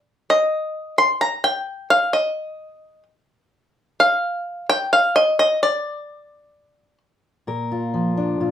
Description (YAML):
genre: folk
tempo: 130 BPM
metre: 4/4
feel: straight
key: unclear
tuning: A4 = 440 Hz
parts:
  - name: bluegrass banjo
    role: melody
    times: 0.3-7.0 s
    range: D5 to C6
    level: -17 LUFS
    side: equal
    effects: none
  - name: fingerpicked steel-string acoustic guitar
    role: accompaniment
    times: 7.5-8.5 s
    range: Bb2 to Bb4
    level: -21 LUFS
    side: left 1 dB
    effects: none
room: moderate studio ambience, RT60 0.5 s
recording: band playing live in one room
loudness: -18 LUFS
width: side -10 dB against mid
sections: 0.0-7.5 A section; 7.5-8.5 B section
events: none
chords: 0.0 N.C.; 7.5 Bb